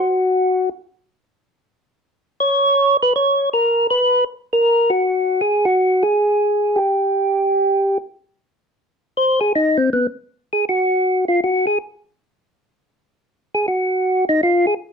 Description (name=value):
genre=jazz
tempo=160 BPM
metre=4/4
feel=swing 65% on 8ths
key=unclear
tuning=A4 = 440 Hz
part: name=percussive tonewheel organ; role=solo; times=0.0-14.7 s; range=Cb4 to Db5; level=-15 LUFS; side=equal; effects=slow rotary speaker
room=light reverb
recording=close, detailed microphones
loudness=-16 LUFS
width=side -5 dB against mid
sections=0.0-8.4 A section; 8.4-14.9 B section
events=tonewheel organ solo 8.4-14.9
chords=none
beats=0.10 0.48 | 0.86 1.24 1.62 2.00 | 2.37 2.75 3.13 3.50 | 3.88 4.26 4.63 5.01 | 5.39 5.76 6.14 6.52 | 6.89 7.27 7.64 8.02 | 8.40 8.77 9.15 9.52 | 9.90 10.28 10.65 11.03 | 11.40 11.78 12.15 12.53 | 12.91 13.28 13.66 14.03 | 14.41